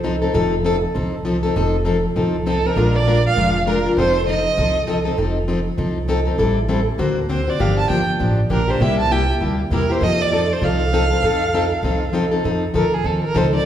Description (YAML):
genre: acoustic string swing (jazz manouche)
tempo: 198 BPM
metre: 4/4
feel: swing 60% on 8ths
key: F mixolydian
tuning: A4 = 441 Hz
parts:
  - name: picked plugged-in steel-string acoustic guitar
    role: accompaniment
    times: 0.0-13.6 s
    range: C3 to C5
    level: -19 LUFS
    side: left 2 dB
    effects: none
  - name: upright bass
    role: bass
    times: 0.0-13.6 s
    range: F1 to F2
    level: -22 LUFS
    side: right 1 dB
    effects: none
  - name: warm violin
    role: melody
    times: 2.5-5.0, 7.3-13.7 s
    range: Ab4 to A5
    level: -21 LUFS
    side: right 3 dB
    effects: none
room: wet recital hall reverb, RT60 1.7 s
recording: recorded in a church or concert hall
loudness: -16 LUFS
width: side -10 dB against mid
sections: 0.0-12.4 A section; 12.4-13.7 B section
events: violin solo 12.4-13.7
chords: 0.0 F7; 2.8 Bb7; 4.0 F7; 6.4 Am7; 7.0 Daug7; 7.6 Gm7; 8.8 C7; 10.0 F7